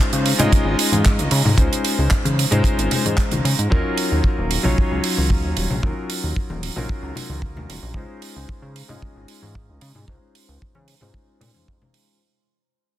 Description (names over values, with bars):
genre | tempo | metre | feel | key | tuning
nu-disco, nu disco | 113 BPM | 4/4 | straight | unclear | A4 = 437 Hz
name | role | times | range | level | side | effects
clear electric grand piano | accompaniment | 0.0-12.2 s | Gb3 to Eb5 | -24 LUFS | left 1 dB | sidechain pumping, low-pass filter, tape echo
deep reggae drum kit | drums | 0.0-12.0 s | handclaps, hi-hat | -24 LUFS | right 5 dB | none
chorused synth bass | bass | 0.1-11.8 s | Eb1 to Db3 | -22 LUFS | equal | sidechain pumping
congas | percussion | 0.4-11.9 s | none | -27 LUFS | left 3 dB | none
kick drum | drums | 0.5-11.8 s | none | -20 LUFS | equal | none
room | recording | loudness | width
light reverb, small room ambience | dense, heavily limited modern master | -17 LUFS | side -13 dB against mid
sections
0.0-12.2 A section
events
fade-out 0.0-12.2; filter sweep on electric grand piano 0.0-12.2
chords
0.0 Dbmaj9; 3.7 Ebm9; 8.0 Dbmaj9